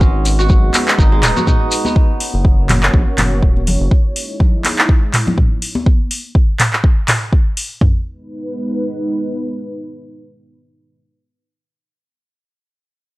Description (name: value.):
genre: afro house.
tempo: 123 BPM.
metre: 4/4.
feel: swing 57% on 16ths.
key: G# minor.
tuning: A4 = 441 Hz.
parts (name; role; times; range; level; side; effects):
dark analog pad; sustained chords; 0.0-11.0 s; G#3 to C#5; -24 LUFS; equal; chorus, sidechain pumping.
kora; arpeggios; 0.0-3.7 s; G#3 to G#4; -21 LUFS; right 2 dB; sidechain pumping, analog delay.
round analog bass; bass; 0.0-3.9 s; D#1 to A#1; -16 LUFS; equal; sidechain pumping.
deep house drum kit; drums; 0.0-7.9 s; kick drum, toms; -12 LUFS; equal; none.
shekere; percussion; 0.0-1.9 s; none; -23 LUFS; left 1 dB; none.
afro-pop drum kit; drums; 0.3-7.7 s; handclaps, hi-hat, toms; -17 LUFS; equal; none.
congas; percussion; 0.5-5.8 s; none; -23 LUFS; left 2 dB; none.
room: digital ambience.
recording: dry, gritty hardware recording, cassette tape.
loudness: -12 LUFS.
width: side -20 dB against mid.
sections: 0.0-7.8 A section; 7.8-11.7 B section.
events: drop 0.0-7.8.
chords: 0.0 G#m; 2.0 F#; 3.9 C#madd9; 5.9 N.C.; 7.8 G#m.